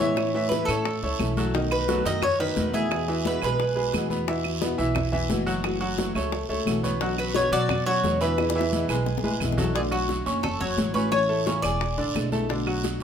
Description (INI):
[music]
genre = latin, Cuban son and guajira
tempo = 175 BPM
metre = 4/4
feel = straight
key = unclear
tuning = A4 = 439 Hz
[part]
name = Cuban tres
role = melody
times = 0.0-4.1, 7.2-12.3 s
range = F#4 to D#5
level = -26 LUFS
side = equal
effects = none
[part]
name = nylon-string guitar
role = accompaniment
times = 0.0-13.0 s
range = B2 to F#4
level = -31 LUFS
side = left 3 dB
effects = none
[part]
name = bright concert grand piano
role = arpeggios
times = 0.0-13.0 s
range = C#3 to C#6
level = -28 LUFS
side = right 1 dB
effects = none
[part]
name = upright bass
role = bass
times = 0.0-13.0 s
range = E1 to B2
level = -30 LUFS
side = right 1 dB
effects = none
[part]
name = bongos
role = percussion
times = 0.0-13.0 s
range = none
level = -33 LUFS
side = left 4 dB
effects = none
[part]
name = congas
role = percussion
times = 0.0-13.0 s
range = none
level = -32 LUFS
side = left 1 dB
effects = none
[part]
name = claves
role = percussion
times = 0.2-12.8 s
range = none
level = -36 LUFS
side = right 6 dB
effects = none
[part]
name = guiro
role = percussion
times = 0.2-13.0 s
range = none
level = -37 LUFS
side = right 5 dB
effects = none
[sound]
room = moderate studio reverb, RT60 0.9 s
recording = minimal, uncompressed stereo recording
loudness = -22 LUFS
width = side -8 dB against mid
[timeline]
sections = 0.0-9.8 A section; 9.8-13.0 B section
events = drum fill 8.4-9.8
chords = 0.2 A; 1.5 B7; 2.9 Eadd9; 4.3 Esus2; 5.6 F#m7; 7.0 Bmadd9; 8.4 E; 9.8 Bm7; 10.4 F#m7; 11.1 A; 11.8 E7; 12.5 Bm7